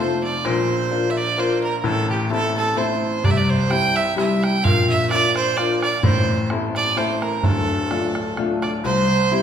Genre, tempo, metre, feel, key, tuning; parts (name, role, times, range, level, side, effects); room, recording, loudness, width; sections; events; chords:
celtic folk, Celtic waltz; 129 BPM; 3/4; swing 54% on 8ths; A4 = 440 Hz
bright fiddle; melody; 0.0-9.4 s; G4 to G5; -21 LUFS; right 4 dB
clear grand piano; accompaniment; 0.0-9.4 s; D1 to F4; -20 LUFS; left 3 dB
bodhran; percussion; 3.2-8.7 s; -24 LUFS; right 2 dB
wet recital hall reverb, RT60 1.6 s; recorded in a church or concert hall; -17 LUFS; side -8 dB against mid
0.0-8.8 A section
0.4 Bb; 1.8 Am; 3.2 C; 4.6 Bb; 6.0 Am; 7.4 Dm; 8.8 C